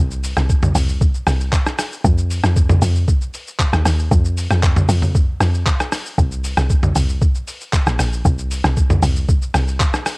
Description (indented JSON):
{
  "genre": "amapiano",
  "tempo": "116 BPM",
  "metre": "4/4",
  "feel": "straight",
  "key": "C minor",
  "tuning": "A4 = 441 Hz",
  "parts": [
    { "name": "woody log drum bass", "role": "bass", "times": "0.0-9.8 s", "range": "Bb1 to F2", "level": "-17 LUFS", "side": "equal", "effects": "none" },
    { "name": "boom bap sampler-style drum kit", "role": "drums", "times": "0.1-10.2 s", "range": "handclaps, hi-hat, kick drum, rim click, shaker, toms", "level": "-17 LUFS", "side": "equal", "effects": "cassette tape" }
  ],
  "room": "little or no reverb",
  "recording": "home recording on cassette",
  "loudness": "-15 LUFS",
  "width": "side -29 dB against mid",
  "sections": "0.0-10.2 A section",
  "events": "none",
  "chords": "none"
}